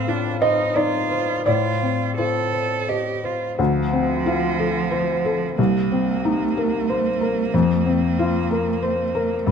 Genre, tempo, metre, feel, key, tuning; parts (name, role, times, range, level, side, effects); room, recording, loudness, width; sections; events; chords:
neoclassical piano and strings; 83-94 BPM; 3/4; rubato; A4 = 436 Hz
clear cello; second line; 0.0-9.5 s; F3 to A4; -25 LUFS; right 8 dB
felt-muted upright piano; accompaniment; 0.0-9.5 s; C2 to F5; -20 LUFS; left 2 dB
moderate recital hall reverb, RT60 1.4 s; -19 LUFS; side -7 dB against mid
0.0-3.6 A section; 3.6-9.5 B section
0.0 F7/A; 3.6 Dm7; 5.6 Cm7; 7.5 Fsus4